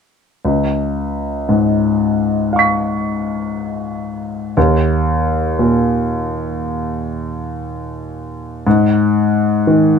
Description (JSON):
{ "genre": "neoclassical minimalist piano", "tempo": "58 BPM", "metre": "4/4", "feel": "rubato", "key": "unclear", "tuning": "A4 = 445 Hz", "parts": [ { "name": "clear grand piano", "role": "solo", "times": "0.4-10.0 s", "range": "Db2 to Cb7", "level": "-14 LUFS", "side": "left 1 dB", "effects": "none" } ], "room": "light reverb", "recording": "minimal, uncompressed stereo recording", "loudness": "-15 LUFS", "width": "side -6 dB against mid", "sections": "0.4-10.0 A section", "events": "none", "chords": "0.4 Db7; 4.6 Eb5; 8.7 Ab5", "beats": "| 0.43 1.48 2.51 3.54 | 4.56 5.59 6.62 7.64 | 8.65 9.66" }